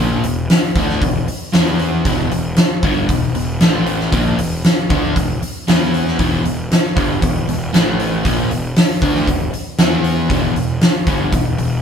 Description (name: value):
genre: blues rock power trio and southern rock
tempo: 116 BPM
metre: 4/4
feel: straight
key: E minor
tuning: A4 = 440 Hz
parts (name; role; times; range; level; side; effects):
- crunchy overdriven guitar; riff; 0.0-11.8 s; E2 to E4; -19 LUFS; left 1 dB; none
- fuzz picked electric bass; bass; 0.0-11.8 s; E1 to E2; -22 LUFS; equal; overdrive
- huge arena drum kit; drums; 0.2-11.7 s; hi-hat, kick drum, snare drum; -16 LUFS; equal; none
room: light reverb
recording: band playing live in one room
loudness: -14 LUFS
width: side -7 dB against mid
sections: 0.0-11.8 A section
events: none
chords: 0.0 Em; 3.6 A5; 4.1 Em; 7.7 A5; 8.3 Em